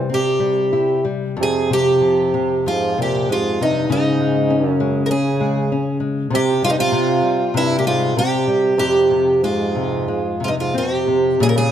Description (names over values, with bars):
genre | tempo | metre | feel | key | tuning
fado-style ballad | 88-101 BPM | 4/4 | rubato | F minor | A4 = 440 Hz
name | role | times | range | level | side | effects
picked twelve-string acoustic guitar | melody | 0.0-11.7 s | Eb4 to C5 | -18 LUFS | equal | none
mellow bassoon | second line | 0.0-11.7 s | G2 to Db3 | -22 LUFS | right 7 dB | none
nylon-string guitar | accompaniment | 0.0-11.7 s | F2 to E4 | -21 LUFS | left 5 dB | none
room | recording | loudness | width
light reverb | close, detailed microphones | -16 LUFS | side -10 dB against mid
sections
0.0-11.4 A section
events
none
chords
0.0 C; 1.4 Fm; 3.9 Db5; 6.3 C5; 8.8 Fm